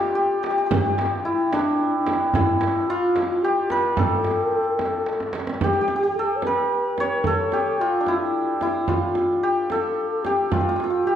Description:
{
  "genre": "Persian modal ensemble",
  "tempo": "73 BPM (dotted quarters)",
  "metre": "6/8",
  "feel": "straight",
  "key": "A dastgah shur",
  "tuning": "A4 = 445 Hz",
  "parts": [
    { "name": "santur", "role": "melody", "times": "0.0-11.2 s", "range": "D4 to C#5", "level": "-22 LUFS", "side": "equal", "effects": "none" },
    { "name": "breathy mellow low ney", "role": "second line", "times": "0.0-11.2 s", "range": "D4 to C#5", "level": "-25 LUFS", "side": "left 3 dB", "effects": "none" },
    { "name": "tombak", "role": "percussion", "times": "0.2-5.6 s", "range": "none", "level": "-29 LUFS", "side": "right 2 dB", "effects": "none" },
    { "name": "frame drum", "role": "percussion", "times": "0.7-10.9 s", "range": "none", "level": "-28 LUFS", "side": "right 4 dB", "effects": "none" }
  ],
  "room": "wet recital hall reverb, RT60 1.5 s",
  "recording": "dark, warm production",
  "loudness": "-20 LUFS",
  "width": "side -9 dB against mid",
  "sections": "0.0-5.6 A section; 5.6-11.2 B section",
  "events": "drum fill 5.1-5.6",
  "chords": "none"
}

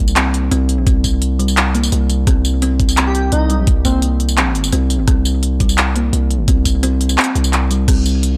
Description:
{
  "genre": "half-time drum and bass",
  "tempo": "171 BPM",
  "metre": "4/4",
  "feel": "half-time",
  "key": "unclear",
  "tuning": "A4 = 440 Hz",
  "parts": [
    { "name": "kalimba", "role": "arpeggios", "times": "0.0-8.4 s", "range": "G3 to C4", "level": "-23 LUFS", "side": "equal", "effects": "vintage 12-bit sampler grit, analog delay" },
    { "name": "long sustained 808-style bass", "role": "bass", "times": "0.0-8.4 s", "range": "C2", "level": "-18 LUFS", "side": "equal", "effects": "none" },
    { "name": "drum and bass drum kit", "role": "drums", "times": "0.1-8.3 s", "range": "crash cymbal, handclaps, hi-hat, rim click, tambourine", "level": "-21 LUFS", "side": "equal", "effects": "none" },
    { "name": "electronic kick drum", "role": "drums", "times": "0.9-8.0 s", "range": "none", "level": "-18 LUFS", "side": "equal", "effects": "none" },
    { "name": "airy dreamy lead", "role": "melody", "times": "3.1-4.0 s", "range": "C4 to G4", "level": "-24 LUFS", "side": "equal", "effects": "chorus, analog delay" },
    { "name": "backwards swelling texture", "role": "texture", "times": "8.3-8.4 s", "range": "none", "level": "barely audible", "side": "none", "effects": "none" }
  ],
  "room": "little or no reverb",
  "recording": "dry, gritty hardware recording, transformer saturation",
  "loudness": "-15 LUFS",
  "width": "mono",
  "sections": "0.0-8.4 A section",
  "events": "none",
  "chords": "0.0 C5"
}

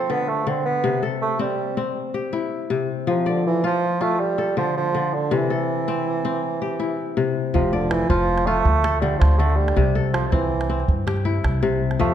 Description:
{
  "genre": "west african traditional, West African string and xylophone music",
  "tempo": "107 BPM (dotted quarters)",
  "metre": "12/8",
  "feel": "straight",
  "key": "unclear",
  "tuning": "A4 = 440 Hz",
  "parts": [
    { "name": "warm bassoon", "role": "melody", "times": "0.0-12.1 s", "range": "C3 to C4", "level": "-23 LUFS", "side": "right 4 dB", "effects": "none" },
    { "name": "kora", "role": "arpeggios", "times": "0.0-12.1 s", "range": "C3 to D5", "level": "-23 LUFS", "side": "left 5 dB", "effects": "none" },
    { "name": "upright bass", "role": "bass", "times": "7.5-12.1 s", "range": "F1 to G2", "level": "-22 LUFS", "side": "equal", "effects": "none" },
    { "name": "calabash", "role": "percussion", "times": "7.5-12.1 s", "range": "none", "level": "-25 LUFS", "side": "right 2 dB", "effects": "none" }
  ],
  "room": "wet recital hall reverb, RT60 1.7 s",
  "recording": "dark, warm production",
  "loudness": "-19 LUFS",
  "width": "side -10 dB against mid",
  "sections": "0.0-7.5 A section; 7.5-12.1 A section",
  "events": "none",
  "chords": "0.0 D5; 0.8 C; 3.1 Dm7/C; 4.2 Dm; 5.3 C; 7.5 F5; 8.7 D5; 9.8 C"
}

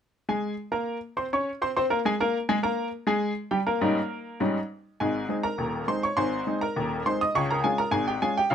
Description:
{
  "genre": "ragtime piano",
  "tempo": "102 BPM",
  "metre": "2/4",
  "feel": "straight",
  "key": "Ab major",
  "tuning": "A4 = 440 Hz",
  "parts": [
    { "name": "bright upright piano", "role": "solo", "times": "0.3-8.5 s", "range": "Eb1 to Eb6", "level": "-24 LUFS", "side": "equal", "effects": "none" }
  ],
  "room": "light reverb",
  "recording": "close, detailed microphones",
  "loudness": "-24 LUFS",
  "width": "side -8 dB against mid",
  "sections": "0.3-5.0 A section; 5.0-8.5 B section",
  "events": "none",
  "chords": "0.3 Ab; 2.6 Eb7; 5.0 Ab; 7.3 Db"
}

